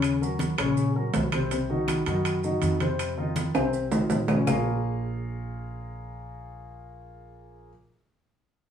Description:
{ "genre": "Afro-Cuban jazz", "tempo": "162 BPM", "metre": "4/4", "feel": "straight", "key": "Bb minor", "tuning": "A4 = 440 Hz", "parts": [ { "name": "warm grand piano", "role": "accompaniment", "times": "0.0-7.7 s", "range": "C3 to F5", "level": "-28 LUFS", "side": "left 2 dB", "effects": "none" }, { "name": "upright bass", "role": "bass", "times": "0.0-7.7 s", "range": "Bb1 to Gb2", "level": "-31 LUFS", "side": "right 1 dB", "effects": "none" }, { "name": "claves", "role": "percussion", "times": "0.0-4.6 s", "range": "none", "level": "-40 LUFS", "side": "left 5 dB", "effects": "none" }, { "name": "congas", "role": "percussion", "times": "0.0-4.6 s", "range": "none", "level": "-32 LUFS", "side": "equal", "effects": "none" }, { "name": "maracas", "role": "percussion", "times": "0.0-4.6 s", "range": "none", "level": "-43 LUFS", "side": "right 4 dB", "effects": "none" }, { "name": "timbales", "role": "percussion", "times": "0.0-4.6 s", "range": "none", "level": "-29 LUFS", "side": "right 2 dB", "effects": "none" } ], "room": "wet studio reverb, RT60 0.8 s", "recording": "band playing live in one room, studio reverb", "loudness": "-24 LUFS", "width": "side -8 dB against mid", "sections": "0.0-4.5 A section; 4.5-7.4 B section", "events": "drum fill 3.5-4.5", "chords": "0.0 Ebm7; 1.5 Cdim; 3.0 F5; 4.5 Bbm7" }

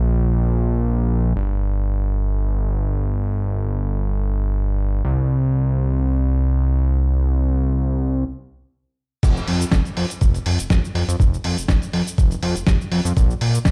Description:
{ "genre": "nu-disco, nu disco", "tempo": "122 BPM", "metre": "4/4", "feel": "swing 53% on 16ths", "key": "unclear", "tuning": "A4 = 442 Hz", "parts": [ { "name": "fat analog bass", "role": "bass", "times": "0.0-13.7 s", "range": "F1 to Bb2", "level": "-21 LUFS", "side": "equal", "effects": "sidechain pumping" }, { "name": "dusty soul sampler-style drum kit", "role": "drums", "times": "9.2-13.7 s", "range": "crash cymbal, hi-hat, shaker, snare drum", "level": "-27 LUFS", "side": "equal", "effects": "small room ambience" }, { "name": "electronic kick drum", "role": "drums", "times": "9.2-13.7 s", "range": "none", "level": "-19 LUFS", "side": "equal", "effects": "small room ambience" } ], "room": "digital ambience", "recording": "played on a big sound system in a bare room, large studio reverb", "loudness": "-20 LUFS", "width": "mono", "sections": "0.0-9.2 A section; 9.2-13.7 B section", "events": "stop 8.2-9.2; drop 9.2-13.7", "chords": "none" }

